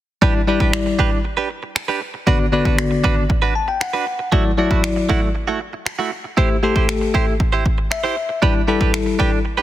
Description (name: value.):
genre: dance-pop.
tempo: 117 BPM.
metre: 4/4.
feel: straight.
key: E minor.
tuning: A4 = 438 Hz.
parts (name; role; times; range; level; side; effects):
bell-like tine electric piano; accompaniment; 0.2-9.4 s; D3 to A5; -21 LUFS; left 4 dB; sidechain pumping.
direct-recorded clean electric guitar; riff; 0.2-9.6 s; A3 to C5; -22 LUFS; right 6 dB; wide subtle chorus.
house drum kit; drums; 0.2-9.3 s; finger snaps, kick drum; -19 LUFS; equal; soft clipping on snare.
room: light reverb, digital ambience.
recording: dense, heavily limited modern master.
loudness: -16 LUFS.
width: side -13 dB against mid.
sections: 0.2-9.6 A section.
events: tine electric piano fill 3.3-4.3, 7.7-8.4.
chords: 0.2 Em7; 2.3 Bm/D; 4.3 Dadd9; 6.4 Am7; 8.4 Em7.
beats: | 0.22 0.73 1.25 1.76 | 2.27 2.78 3.30 3.81 | 4.32 4.83 5.35 5.86 | 6.37 6.89 7.40 7.91 | 8.43 8.94 9.45.